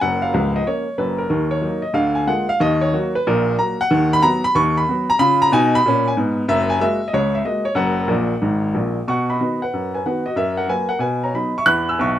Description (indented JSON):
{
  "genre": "jazz, stride piano",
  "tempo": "186 BPM",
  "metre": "4/4",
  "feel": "swing 66% on 8ths",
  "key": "B major from 3.9 s",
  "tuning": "A4 = 442 Hz",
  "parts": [
    { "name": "warm upright piano", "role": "solo", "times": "0.0-12.2 s", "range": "C#1 to F#6", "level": "-16 LUFS", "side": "equal", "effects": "none" }
  ],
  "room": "light reverb",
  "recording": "close, detailed microphones",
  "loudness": "-16 LUFS",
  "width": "side -11 dB against mid",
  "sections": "0.0-9.1 A section; 9.1-12.2 B section",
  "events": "upright piano fill 8.1-9.1",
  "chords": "0.0 F#; 1.3 D#m; 2.0 A#7/D; 2.6 D#m7; 3.9 B/D#; 5.2 C#7; 6.5 F#add9; 7.8 F#; 9.1 B; 10.4 F#; 11.0 B; 11.7 E",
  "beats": "| 0.03 0.35 0.67 1.00 | 1.32 1.64 1.97 2.29 | 2.61 2.94 3.26 3.58 | 3.90 4.23 4.55 4.87 | 5.20 5.52 5.84 6.16 | 6.49 6.81 7.13 7.45 | 7.78 8.10 8.42 8.74 | 9.07 9.39 9.71 10.04 | 10.36 10.68 11.01 11.33 | 11.65 11.98"
}